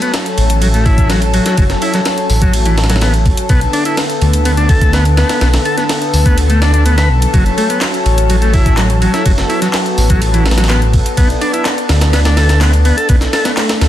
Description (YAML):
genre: breakbeat, breaks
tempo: 125 BPM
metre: 4/4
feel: straight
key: F# minor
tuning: A4 = 440 Hz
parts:
  - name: lush unison pad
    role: sustained chords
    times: 0.0-13.9 s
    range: D3 to A4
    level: -18 LUFS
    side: left 2 dB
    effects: chorus, sidechain pumping
  - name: combo organ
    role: riff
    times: 0.0-13.5 s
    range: E3 to B4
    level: -18 LUFS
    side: equal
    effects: dub echo
  - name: breakbeat sampler-style drum kit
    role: drums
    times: 0.0-13.9 s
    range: hi-hat, kick drum, ride cymbal, snare drum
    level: -16 LUFS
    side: equal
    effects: small room reverb
  - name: punchy analog drum machine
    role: drums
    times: 0.0-13.8 s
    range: handclaps, hi-hat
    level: -23 LUFS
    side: left 1 dB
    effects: small room reverb
  - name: dark detuned saw bass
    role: bass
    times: 0.4-13.9 s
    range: F#1 to D2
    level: -12 LUFS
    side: equal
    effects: none
room: light reverb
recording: dense, heavily limited modern master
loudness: -10 LUFS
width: side -12 dB against mid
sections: 0.0-13.9 A section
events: none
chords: 0.0 F#m; 3.5 Bm7; 7.3 F#m; 11.2 Bm7